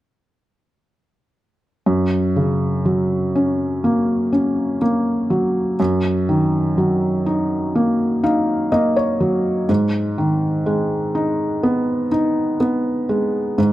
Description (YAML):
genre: pop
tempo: 62 BPM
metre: 4/4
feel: straight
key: F# major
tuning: A4 = 440 Hz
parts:
  - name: felt-muted upright piano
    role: accompaniment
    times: 1.9-13.7 s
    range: F#2 to E#5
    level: -16 LUFS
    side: equal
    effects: none
room: small room ambience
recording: dry, close 1970s-style studio recording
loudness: -17 LUFS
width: side -15 dB against mid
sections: 1.9-13.7 A section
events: felt piano fill 7.8-9.7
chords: 1.9 F#; 5.8 D#m/F#; 9.7 G#m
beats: | 1.86 2.85 3.83 4.82 | 5.80 6.78 7.75 8.72 | 9.69 10.66 11.63 12.61 | 13.58